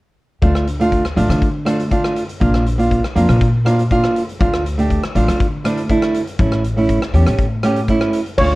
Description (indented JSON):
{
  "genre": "calypso",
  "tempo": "121 BPM",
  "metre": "4/4",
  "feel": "straight",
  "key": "D harmonic minor",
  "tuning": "A4 = 440 Hz",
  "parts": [
    { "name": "nylon-string guitar", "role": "accompaniment", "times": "0.4-8.6 s", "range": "A3 to G4", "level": "-17 LUFS", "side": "right 1 dB", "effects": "none" },
    { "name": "upright bass", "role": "bass", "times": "0.4-8.6 s", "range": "A1 to D3", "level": "-18 LUFS", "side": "equal", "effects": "none" },
    { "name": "big rock drum kit", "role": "drums", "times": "0.4-8.5 s", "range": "crash cymbal, hi-hat, kick drum, rim click", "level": "-21 LUFS", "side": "left 1 dB", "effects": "none" },
    { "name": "steel pan", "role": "melody", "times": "8.4-8.6 s", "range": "C#5", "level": "-14 LUFS", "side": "equal", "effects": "none" }
  ],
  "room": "light reverb",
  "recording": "worn, warbling old tape, cassette tape, warbly pitch drift",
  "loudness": "-14 LUFS",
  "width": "side -20 dB against mid",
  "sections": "0.4-8.4 A section",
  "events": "none",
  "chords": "0.4 Dm; 2.4 Bb; 4.4 Dmadd9; 6.4 A"
}